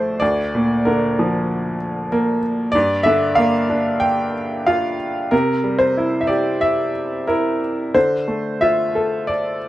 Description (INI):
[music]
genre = classical, lyrical solo piano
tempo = 93 BPM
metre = 4/4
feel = uneven beats, rubato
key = unclear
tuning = A4 = 440 Hz
[part]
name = bright upright piano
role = solo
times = 0.0-9.7 s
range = D2 to G5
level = -17 LUFS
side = equal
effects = none
[sound]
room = light reverb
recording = none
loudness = -16 LUFS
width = side -15 dB against mid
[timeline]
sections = 0.0-9.7 A section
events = none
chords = 0.2 Bb/D; 2.7 Gm7; 5.3 C7; 8.0 Dm7